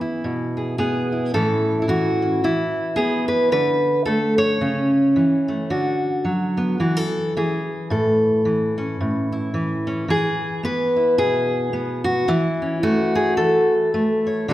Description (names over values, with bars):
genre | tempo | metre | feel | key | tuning
folk, solo fingerstyle acoustic guitar | 110 BPM | 4/4 | swing 59% on 8ths | A major | A4 = 439 Hz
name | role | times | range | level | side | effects
fingerpicked steel-string acoustic guitar | solo | 0.0-14.5 s | A2 to C#5 | -18 LUFS | equal | none
room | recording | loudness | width
moderate recital hall reverb, RT60 1.6 s | none | -18 LUFS | side -14 dB against mid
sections
0.0-10.1 A section; 10.1-14.5 B section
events
none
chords
0.0 E; 1.3 A; 2.4 E5; 3.5 D5; 4.6 A/C#; 5.7 Bm/D; 6.8 Esus4; 7.4 E; 7.9 A; 10.1 E; 12.3 A/E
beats
0.24 0.78 | 1.33 1.88 2.43 2.97 | 3.52 4.07 4.62 5.16 | 5.71 6.26 6.80 7.35 | 7.90 8.45 9.00 9.54 | 10.09 10.64 11.19 11.73 | 12.28 12.83 13.38 13.93 | 14.48